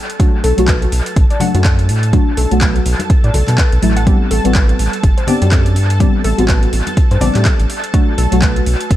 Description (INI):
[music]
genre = deep house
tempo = 124 BPM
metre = 4/4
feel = swing 58% on 16ths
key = unclear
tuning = A4 = 436 Hz
[part]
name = analog string pad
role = texture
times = 0.0-9.0 s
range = A4 to A5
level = -26 LUFS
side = equal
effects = ensemble chorus, sidechain pumping
[part]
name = deep house drum kit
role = drums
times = 0.1-9.0 s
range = handclaps, hi-hat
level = -22 LUFS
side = equal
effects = overdrive, small room reverb, dub echo
[part]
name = warbly dusty pluck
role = arpeggios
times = 0.2-8.5 s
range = F#4 to A5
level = -24 LUFS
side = left 2 dB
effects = chorus, cassette tape, sidechain pumping, analog delay
[part]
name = deep mellow chord stab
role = stabs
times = 0.2-9.0 s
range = F#3 to G4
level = -18 LUFS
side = left 1 dB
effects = chorus, phaser, sidechain pumping, analog delay
[part]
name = electronic kick drum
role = drums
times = 0.2-9.0 s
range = none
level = -13 LUFS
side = equal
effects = overdrive, small room reverb
[part]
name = round analog bass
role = bass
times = 0.4-9.0 s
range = G1 to B2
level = -14 LUFS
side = equal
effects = sidechain pumping
[part]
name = congas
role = percussion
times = 1.4-7.4 s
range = none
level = -24 LUFS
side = left 1 dB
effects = none
[sound]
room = digital ambience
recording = echo-heavy mix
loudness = -11 LUFS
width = side -13 dB against mid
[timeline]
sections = 0.0-9.0 A section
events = filter sweep on synth stab 0.0-9.0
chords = 0.0 Bm7; 4.1 Am11; 7.7 Bm7